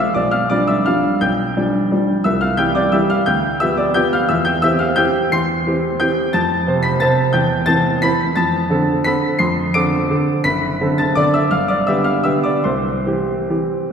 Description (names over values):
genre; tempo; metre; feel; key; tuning
classical, piano waltz; 140-187 BPM; 3/4; rubato; C major; A4 = 440 Hz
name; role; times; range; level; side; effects
bright baby grand piano; solo; 0.0-13.9 s; F#1 to D7; -14 LUFS; equal; none
room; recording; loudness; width
wet concert hall reverb, RT60 2.4 s; heard from further back in the room; -14 LUFS; side -7 dB against mid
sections
0.0-13.9 A section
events
none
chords
0.2 G7/B; 2.3 C; 3.3 G7/D; 4.3 C/E; 6.3 F; 7.3 C/E; 8.4 Dm7/F; 10.4 D7/F#; 11.5 G7; 12.7 C